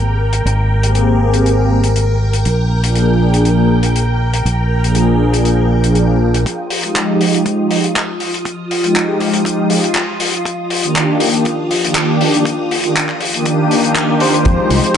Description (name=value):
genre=nu-disco, nu disco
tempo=120 BPM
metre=4/4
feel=straight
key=F dorian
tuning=A4 = 440 Hz
part: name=string machine, full ensemble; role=sustained chords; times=0.0-15.0 s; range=F4 to Eb6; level=-21 LUFS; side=left 1 dB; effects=phaser, ensemble chorus, vintage 12-bit sampler grit, sidechain pumping
part: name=fingered electric bass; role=bass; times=0.0-6.4, 14.5-14.9 s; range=Ab1 to F2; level=-14 LUFS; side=equal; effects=tube saturation, sidechain pumping
part: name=damped 70s drum kit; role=drums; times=0.3-14.9 s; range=handclaps, hi-hat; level=-19 LUFS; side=left 2 dB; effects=high-pass filter on hats, high-pass filter on snare, high-pass filter on room
part: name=warm analog pad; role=accompaniment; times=0.8-15.0 s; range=Eb3 to Ab4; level=-15 LUFS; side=equal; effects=chorus, sidechain pumping, tape echo
part: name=kick drum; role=drums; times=6.5-14.6 s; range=none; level=-21 LUFS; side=equal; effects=high-pass filter on kick, high-pass filter on snare, high-pass filter on room
part: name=wide unison lead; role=melody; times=14.2-15.0 s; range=C5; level=-17 LUFS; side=equal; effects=none
room=moderate plate reverb, RT60 1.4 s, studio reverb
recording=echo-heavy mix, nothing above 10.7 kHz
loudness=-12 LUFS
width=side -8 dB against mid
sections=0.0-6.5 A section; 6.5-14.5 B section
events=build-up 6.5-14.5; filter sweep on string machine 6.5-14.5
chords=0.0 Abmaj9; 2.5 Bb7; 6.5 Fm9; 10.5 Ebmaj7; 14.5 Fm9